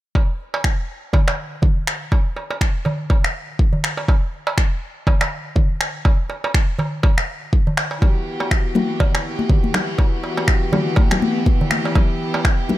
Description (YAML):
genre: afro house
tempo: 122 BPM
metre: 4/4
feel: swing 57% on 16ths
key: E minor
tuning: A4 = 440 Hz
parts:
  - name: electronic kick drum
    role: drums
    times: 0.2-12.6 s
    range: none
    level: -16 LUFS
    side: equal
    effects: none
  - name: darbuka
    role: percussion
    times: 0.2-12.4 s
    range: none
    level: -25 LUFS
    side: right 2 dB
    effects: none
  - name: electronic finger snaps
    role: drums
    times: 0.6-12.6 s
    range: none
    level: -24 LUFS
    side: equal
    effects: none
  - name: bright chamber string section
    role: sustained chords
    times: 8.0-12.8 s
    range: E3 to G4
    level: -24 LUFS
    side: equal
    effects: vintage 12-bit sampler grit, sidechain pumping
  - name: congas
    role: percussion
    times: 8.0-12.8 s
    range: none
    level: -22 LUFS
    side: left 4 dB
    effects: none
room: studio ambience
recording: none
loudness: -17 LUFS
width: side -15 dB against mid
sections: 0.2-12.8 A section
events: none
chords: 0.2 Emadd9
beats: | 0.15 0.64 1.14 1.63 | 2.12 2.61 3.10 3.60 | 4.09 4.58 5.07 5.56 | 6.05 6.55 7.04 7.53 | 8.02 8.51 9.01 9.50 | 9.99 10.48 10.97 11.46 | 11.96 12.45